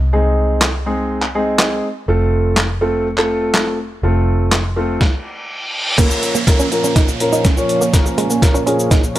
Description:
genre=dance-pop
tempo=123 BPM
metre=4/4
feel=straight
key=Bb minor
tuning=A4 = 441 Hz
part: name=vintage muted fingered electric bass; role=bass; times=0.0-5.0 s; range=F1 to C2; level=-18 LUFS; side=equal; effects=sidechain pumping
part: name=dark baby grand piano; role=accompaniment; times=0.1-9.2 s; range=Ab3 to Db5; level=-18 LUFS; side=equal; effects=sidechain pumping, low-pass filter
part: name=boom bap sampler-style drum kit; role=drums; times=0.6-9.2 s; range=crash cymbal, handclaps, hi-hat, kick drum, shaker, snare drum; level=-15 LUFS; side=equal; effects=none
part: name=reverse cymbal and downlifter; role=sound effects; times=5.3-9.2 s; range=none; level=-24 LUFS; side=right 2 dB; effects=none
part: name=warm analog pad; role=sustained chords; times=6.0-9.2 s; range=Bb2 to Db4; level=-23 LUFS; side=right 1 dB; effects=chorus, sidechain pumping, low-pass filter
part: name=direct-recorded clean electric guitar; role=riff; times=6.0-9.2 s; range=Ab3 to Eb4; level=-20 LUFS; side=right 4 dB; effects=lush chorus, low-pass filter
room=little or no reverb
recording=dry, gritty hardware recording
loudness=-14 LUFS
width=side -14 dB against mid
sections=0.0-6.0 A section; 6.0-9.2 B section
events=stop 5.0-6.0; reverse cymbal 5.3-6.0; build-up 6.0-9.2; drum fill 6.0-9.2; grand piano fill 8.9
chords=0.0 Ab/C; 2.1 F; 6.0 Bbm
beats=| 0.13 0.62 1.11 1.59 | 2.08 2.57 3.06 3.54 | 4.03 4.52 5.01 5.50 | 5.98 6.47 6.96 7.45 | 7.94 8.42 8.91

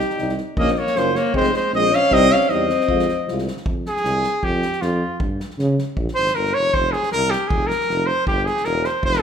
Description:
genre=balkan folk, Balkan brass band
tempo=155 BPM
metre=2/4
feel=swing 54% on 16ths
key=F minor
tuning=A4 = 440 Hz
part: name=clear trumpet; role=melody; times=0.0-9.2 s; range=F4 to F5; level=-20 LUFS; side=equal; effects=none
part: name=unplugged drum kit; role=percussion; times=0.0-9.2 s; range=kick drum, snare drum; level=-28 LUFS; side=equal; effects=none
part: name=mellow euphonium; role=accompaniment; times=0.2-3.4 s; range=G3 to Bb3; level=-26 LUFS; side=right 7 dB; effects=none
part: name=warm euphonium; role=accompaniment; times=0.2-3.4 s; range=C4 to F4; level=-28 LUFS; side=left 4 dB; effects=none
part: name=mellow tuba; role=bass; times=0.2-9.2 s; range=E1 to Db3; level=-25 LUFS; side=right 1 dB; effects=none
part: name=warm alto saxophone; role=second line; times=0.6-3.5 s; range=F3 to Db4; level=-21 LUFS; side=left 2 dB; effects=none
room=moderate recital hall reverb, RT60 1.5 s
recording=minimal, uncompressed stereo recording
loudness=-17 LUFS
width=side -7 dB against mid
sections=0.0-3.7 A section; 3.7-9.2 B section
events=trumpet solo 3.7-9.2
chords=0.0 Cm; 0.6 Bbm; 1.3 Fm; 2.1 Cm; 2.9 Fm; 5.2 N.C.; 6.0 Bb5; 6.7 F5; 8.3 Edim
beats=0.17 | 0.56 0.94 | 1.33 1.72 | 2.11 2.49 | 2.88 3.27 | 3.65 4.04 | 4.43 4.82 | 5.20 5.59 | 5.97 6.36 | 6.74 7.12 | 7.51 7.89 | 8.27 8.66 | 9.04

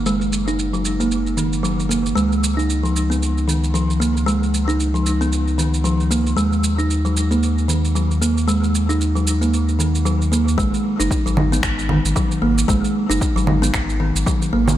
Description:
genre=organic downtempo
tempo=114 BPM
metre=4/4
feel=swing 58% on 16ths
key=unclear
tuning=A4 = 440 Hz
part: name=warm sub bass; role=bass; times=0.0-14.8 s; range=F#1 to D#2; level=-20 LUFS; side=left 1 dB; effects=tube saturation
part: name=kalimba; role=arpeggios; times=0.1-14.7 s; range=D#3 to D#4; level=-19 LUFS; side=right 1 dB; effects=low-pass filter, diffuse ambient delay
part: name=electronic shaker, congas and finger snaps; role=drums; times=0.1-14.8 s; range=none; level=-26 LUFS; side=right 3 dB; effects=overdrive, low-pass filter on perc, small room ambience, low-pass filter on snare
part: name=electronic kick drum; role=drums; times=10.6-14.4 s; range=none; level=-22 LUFS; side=left 1 dB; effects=overdrive, small room ambience
room=light reverb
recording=none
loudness=-16 LUFS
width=side -12 dB against mid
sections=0.0-10.6 A section; 10.6-14.8 B section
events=none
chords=0.0 N.C.; 2.2 C#5; 6.4 N.C.; 10.6 G#7(no3)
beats=| 0.06 0.58 1.11 1.64 | 2.16 2.69 3.22 3.74 | 4.27 4.79 5.32 5.85 | 6.37 6.90 7.43 7.95 | 8.48 9.01 9.53 10.06 | 10.59 11.11 11.64 12.16 | 12.69 13.22 13.74 14.27

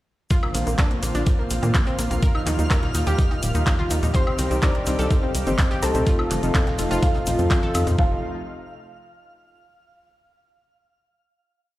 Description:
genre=progressive house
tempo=125 BPM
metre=4/4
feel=straight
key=F mixolydian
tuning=A4 = 440 Hz
part: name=lush unison pad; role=sustained chords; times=0.3-8.2 s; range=C3 to G4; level=-31 LUFS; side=equal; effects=chorus, sidechain pumping
part: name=analog pluck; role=arpeggios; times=0.3-8.2 s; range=F3 to C5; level=-30 LUFS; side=right 1 dB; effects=chorus, sidechain pumping, digital delay
part: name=crunchy breakbeat drum kit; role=drums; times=0.3-8.0 s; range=hi-hat, snare drum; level=-38 LUFS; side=equal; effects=none
part: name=electronic kick drum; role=drums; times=0.3-8.1 s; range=none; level=-20 LUFS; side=equal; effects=overdrive
part: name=pop drum kit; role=drums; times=0.3-8.0 s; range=handclaps, hi-hat, woodblock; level=-29 LUFS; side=equal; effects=overdrive
part: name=egg shaker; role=percussion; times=0.3-8.0 s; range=none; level=-37 LUFS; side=left 2 dB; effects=none
part: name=twinkling granular texture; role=texture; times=0.7-8.0 s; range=F5 to F6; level=-38 LUFS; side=right 2 dB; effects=built-in reverb, sidechain pumping
part: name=woodblock and congas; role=percussion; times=0.4-8.0 s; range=none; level=-33 LUFS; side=left 1 dB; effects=none
part: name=tight sequencer bass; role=bass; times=0.5-8.2 s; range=Eb1 to Bb2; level=-24 LUFS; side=equal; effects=sidechain pumping
part: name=soft octave-layered synth lead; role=melody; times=4.1-8.2 s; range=F4 to D5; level=-29 LUFS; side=left 1 dB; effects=chorus, sidechain pumping, tape echo
part: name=soft round pluck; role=second line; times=4.1-8.2 s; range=F5 to D6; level=-34 LUFS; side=right 1 dB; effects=none
part: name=deep mellow chord stab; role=stabs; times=4.1-8.2 s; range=C4 to C5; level=-28 LUFS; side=left 2 dB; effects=chorus, sidechain pumping, digital delay
room=little or no reverb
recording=played on a big sound system in a bare room, stone room reverb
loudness=-19 LUFS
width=side -16 dB against mid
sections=0.3-8.0 drop; 8.0-9.9 final chord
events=drop 0.3-8.0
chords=0.3 Bbadd9; 2.2 Ebadd9; 4.1 Cm; 6.1 F7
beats=| 0.31 0.79 1.27 1.75 | 2.23 2.71 3.19 3.67 | 4.15 4.63 5.11 5.59 | 6.07 6.55 7.03 7.51 | 7.99

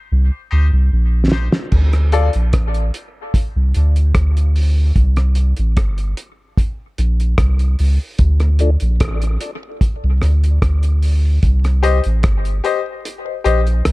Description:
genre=dub reggae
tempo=74 BPM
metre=4/4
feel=straight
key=D phrygian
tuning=A4 = 440 Hz
part: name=soft dub sub bass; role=bass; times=0.1-13.9 s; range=G1 to D2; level=-14 LUFS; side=equal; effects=none
part: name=bright concert grand piano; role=stabs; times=0.3-2.3, 11.8-13.6 s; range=Eb4 to Eb5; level=-22 LUFS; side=left 7 dB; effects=high-pass filter, dub echo
part: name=cloth-damped thuddy drum kit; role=drums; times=1.3-13.9 s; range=crash cymbal, hi-hat, kick drum, rim click, snare drum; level=-18 LUFS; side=equal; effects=none
part: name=mellow tonewheel organ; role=accompaniment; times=8.4-13.8 s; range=D2 to Eb4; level=-28 LUFS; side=left 3 dB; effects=slow rotary speaker, high-pass filter, dub echo
room=small room ambience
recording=dark, warm production, faint mains hum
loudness=-14 LUFS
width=side -21 dB against mid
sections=0.0-1.7 A section; 1.7-13.9 B section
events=drum fill 0.1-1.7; kick muted 13.0-13.9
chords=0.0 Cm; 1.7 D5; 5.0 C5; 8.2 Dm; 11.4 Cm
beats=0.10 0.91 | 1.72 2.53 3.34 4.15 | 4.96 5.77 6.58 7.38 | 8.19 9.00 9.81 10.62 | 11.43 12.24 13.04 13.85

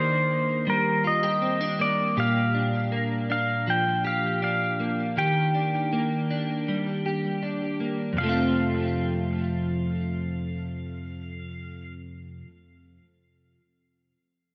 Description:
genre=dream pop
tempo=80 BPM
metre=4/4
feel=straight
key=F mixolydian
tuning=A4 = 440 Hz
part: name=pedal steel guitar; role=melody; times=0.0-11.9 s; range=Bb4 to G5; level=-30 LUFS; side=equal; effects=digital delay
part: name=clean electric guitar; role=arpeggios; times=0.0-12.6 s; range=F2 to G4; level=-28 LUFS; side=equal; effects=analog chorus, digital delay
room=moderate lush hall reverb, RT60 1.7 s, digital ambience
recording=none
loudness=-26 LUFS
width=mono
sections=0.0-8.2 A section; 8.2-11.2 B section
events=none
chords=0.0 Ebmaj7; 2.2 Bb6; 5.2 Ebmaj7; 8.2 F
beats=0.67 1.42 | 2.17 2.92 3.67 4.42 | 5.17 5.92 6.67 7.42 | 8.17 8.92 9.67 10.42

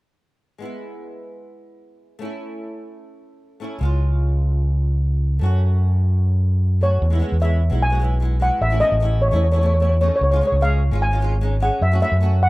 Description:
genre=calypso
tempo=150 BPM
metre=4/4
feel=straight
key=E major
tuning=A4 = 440 Hz
part: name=flamenco guitar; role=accompaniment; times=0.6-12.4 s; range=G#3 to G#4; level=-30 LUFS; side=right 1 dB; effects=double-tracked left and right
part: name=overdriven fingered electric bass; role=bass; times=3.8-12.5 s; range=G#1 to F#2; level=-17 LUFS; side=equal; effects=none
part: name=steel pan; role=melody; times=6.8-12.5 s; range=C#5 to G#5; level=-21 LUFS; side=equal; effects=analog delay
room=little or no reverb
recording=rough home demo mix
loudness=-16 LUFS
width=side -21 dB against mid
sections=0.6-7.0 A section; 7.0-12.5 B section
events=none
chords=0.6 E; 2.2 A; 3.8 C#; 5.4 F#m; 7.0 E6; 8.6 A; 10.2 C#; 11.8 F#m7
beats=| 0.60 1.00 1.40 1.81 | 2.21 2.61 3.01 3.41 | 3.81 4.22 4.62 5.02 | 5.42 5.82 6.22 6.62 | 7.02 7.42 7.82 8.22 | 8.62 9.02 9.42 9.82 | 10.22 10.62 11.02 11.41 | 11.81 12.21

